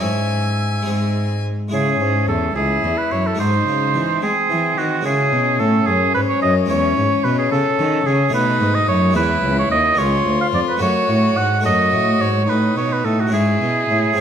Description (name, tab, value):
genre	classical, baroque-style sonata movement with continuo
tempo	72 BPM (dotted quarters)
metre	6/8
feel	straight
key	C# minor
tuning	A4 = 440 Hz
part	clear violin	melody	0.0-14.1 s	B#3 to G#5	-23 LUFS	left 7 dB	none
part	warm oboe	second line	0.0-14.2 s	F#4 to F#5	-19 LUFS	right 4 dB	none
part	harpsichord	accompaniment	0.0-14.2 s	C#2 to A4	-24 LUFS	left 2 dB	none
part	rich cello	bass	0.0-14.2 s	C#2 to G#3	-20 LUFS	right 1 dB	none
room	moderate recital hall reverb, RT60 1.4 s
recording	none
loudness	-15 LUFS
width	side -8 dB against mid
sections	0.0-1.7 A section; 1.7-14.2 A section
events	none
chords	0.0 C#m/G#; 0.9 G#; 1.7 C#m; 3.4 G#7; 5.0 C#m; 6.7 C#m/E; 8.3 B7; 9.2 E; 10.0 C#7; 10.8 F#m; 11.6 D#dim/F#; 13.3 C#m/G#